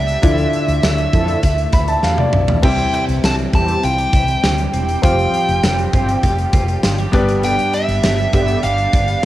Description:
1980s-style pop; 100 BPM; 4/4; straight; C major; A4 = 440 Hz
dark smooth lead guitar; melody; 0.0-9.2 s; E5 to A5; -20 LUFS; right 1 dB; overdrive, tape echo
clear concert grand piano; accompaniment; 0.0-9.2 s; G2 to B5; -21 LUFS; left 2 dB; cassette tape
phased analog pad; sustained chords; 0.0-9.2 s; D3 to E5; -28 LUFS; right 1 dB; phaser, chorus, cassette tape
woody fretless electric bass; bass; 0.0-9.2 s; E1 to F2; -20 LUFS; equal; lush chorus
big rock drum kit; drums; 0.1-9.2 s; crash cymbal, hi-hat, kick drum, snare drum, tambourine, toms; -18 LUFS; equal; cassette tape
mellow synth brass; stabs; 0.2-8.6 s; D3 to A4; -25 LUFS; equal; chorus, cassette tape
clean electric guitar; riff; 2.6-9.2 s; F3 to G4; -26 LUFS; right 3 dB; lush chorus, cassette tape
light reverb, studio ambience; home recording on cassette; -13 LUFS; side -14 dB against mid
0.0-9.2 A section
grand piano fill 1.4-2.6; drum fill 2.0-2.6
0.2 Dmadd9; 2.6 C; 5.0 Fsus2; 7.1 G
| 0.23 0.83 1.44 2.04 | 2.63 3.23 3.83 4.43 | 5.04 5.63 6.24 6.83 | 7.43 8.04 8.63 9.23

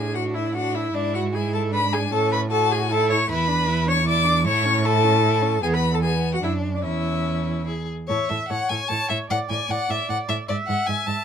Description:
quick classical-period movement for string quartet; 152 BPM; 3/4; rubato; A major; A4 = 439 Hz
warm violin; melody; 0.0-11.2 s; A4 to D6; -25 LUFS; left 9 dB
rich violin; second line; 0.0-11.2 s; B3 to A5; -27 LUFS; left 4 dB
rich viola; accompaniment; 0.0-11.2 s; D4 to E5; -26 LUFS; right 4 dB
rich cello; bass; 0.0-11.1 s; E2 to A2; -24 LUFS; right 3 dB
little or no reverb; close, detailed microphones; -20 LUFS; side -8 dB against mid
0.0-8.1 A section; 8.1-11.2 A section
0.0 D5/A; 0.9 E7/G#; 2.1 A; 3.3 E5; 4.5 A; 5.6 E5; 6.4 D/F#; 6.8 C#m/E; 8.1 A; 9.3 D5/A; 10.5 E/G#
0.15 0.54 | 0.94 1.33 1.73 | 2.12 2.52 2.91 | 3.30 3.69 4.08 | 4.47 4.85 5.24 | 5.63 6.03 6.43 | 6.84 7.26 7.68 | 8.10 8.51 8.90 | 9.30 9.70 10.10 | 10.49 10.88

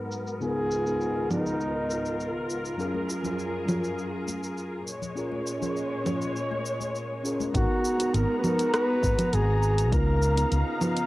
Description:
sunset chillout; 101 BPM; 4/4; straight; G# dorian; A4 = 442 Hz
mellow FM electric piano; accompaniment; 0.0-11.1 s; G#2 to C#5; -31 LUFS; equal; chorus, auto-pan, cassette tape, analog delay, plate reverb
muted studio string section; sustained chords; 0.0-11.1 s; C#2 to A#5; -32 LUFS; equal; low-pass filter, cassette tape
deep house drum kit; drums; 0.1-11.1 s; congas, hi-hat, rim click, shaker; -31 LUFS; right 1 dB; low-pass filter on perc, cassette tape, low-pass filter on hats, low-pass filter on snare, low-pass filter on toms
mellow flugelhorn; melody; 0.4-2.5, 7.6-10.8 s; D#4 to B4; -29 LUFS; equal; cassette tape, analog delay
congas; percussion; 2.9-7.5 s; -40 LUFS; left 6 dB
fretless electric bass; bass; 7.5-10.6 s; G#1 to C#2; -24 LUFS; equal
electronic kick drum; drums; 7.5-10.0 s; -28 LUFS; equal; cassette tape
moderate studio reverb, RT60 0.6 s; home recording on cassette; -25 LUFS; side -18 dB against mid
0.0-7.5 A section; 7.5-11.1 B section
filter sweep on drum 0.0-7.5; filter sweep on string section 0.0-7.5
0.4 C#13; 2.8 F#maj9; 4.9 A#m7; 7.5 G#m9; 9.9 C#13
| 0.42 1.01 1.61 2.20 | 2.79 3.39 3.98 4.58 | 5.17 5.77 6.36 6.95 | 7.55 8.14 8.74 9.33 | 9.92 10.52

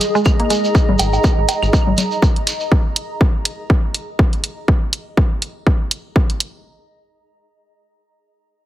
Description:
minimal techno; 122 BPM; 4/4; swing 57% on 16ths; A4 = 440 Hz
electronic hi-hat; drums; 0.0-6.5 s; -18 LUFS; right 1 dB
shekere; percussion; 0.0-2.7 s; -25 LUFS; right 3 dB
granular cloud pad; texture; 0.0-0.7 s; G#4 to A#5; -22 LUFS; right 1 dB; built-in reverb, sidechain pumping
mallet-like synth pluck; riff; 0.2-0.5 s; G#3 to A#3; -21 LUFS; right 3 dB; chorus, sidechain pumping, dub echo
electronic kick drum; drums; 0.3-6.3 s; -14 LUFS; equal; overdrive
claves, congas and woodblock; percussion; 0.3-2.1 s; -22 LUFS; left 2 dB; dub echo
rubbery square bass; bass; 0.9-1.9 s; G#1; -19 LUFS; equal; sidechain pumping
light reverb; heavily compressed radio sound, multiband compression; -15 LUFS; side -13 dB against mid
0.0-6.6 A section
0.0 G#5
0.26 | 0.75 1.24 1.73 2.22 | 2.71 3.21 3.70 4.19 | 4.68 5.17 5.67 6.16

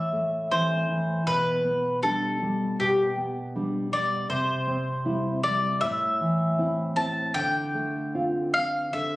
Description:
romantic duo for mandolin and classical guitar; 78 BPM; 4/4; rubato; A4 = 440 Hz
mandolin; melody; 0.0-9.2 s; G4 to A5; -26 LUFS; left 1 dB
nylon-string guitar; accompaniment; 0.0-9.2 s; A2 to F4; -27 LUFS; equal
moderate recital hall reverb, RT60 1.7 s; recorded on a phone in the room, studio reverb; -24 LUFS; side -18 dB against mid
0.0-9.2 A section
0.0 Am; 1.3 G/B; 4.3 C; 5.8 Am; 7.4 Dm7
0.50 | 1.26 2.03 2.80 3.55 | 4.29 5.05 5.81 6.58 | 7.35 8.14 8.94

